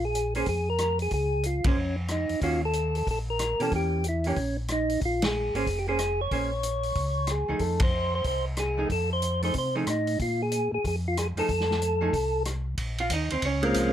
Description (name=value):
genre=soul jazz organ trio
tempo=185 BPM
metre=4/4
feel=swing 64% on 8ths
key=unclear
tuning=A4 = 440 Hz
part: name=percussive tonewheel organ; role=melody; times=0.0-13.9 s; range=Ab3 to Db5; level=-27 LUFS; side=equal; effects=slow rotary speaker
part: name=mellow tonewheel organ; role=bass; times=0.0-13.9 s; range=F1 to C3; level=-30 LUFS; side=equal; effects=chorus vibrato, slow rotary speaker
part: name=vintage drum kit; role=drums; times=0.1-13.8 s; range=hi-hat, kick drum, ride cymbal, rim click, snare drum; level=-32 LUFS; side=equal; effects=none
part: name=archtop guitar, miked and amplified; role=accompaniment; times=0.4-13.9 s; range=Eb3 to F5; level=-31 LUFS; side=right 3 dB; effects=none
room=light reverb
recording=close, detailed microphones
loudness=-25 LUFS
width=side -10 dB against mid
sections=0.0-12.8 A section; 12.8-13.9 B section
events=band accent 1.6, 5.2, 7.8; hollow-body jazz guitar solo 12.8-13.9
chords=0.0 Bbm7; 2.4 Ebm7; 3.7 Edim7; 5.0 Bbm9; 7.6 F7#9; 10.2 Bb5; 11.5 F; 12.8 Bbm9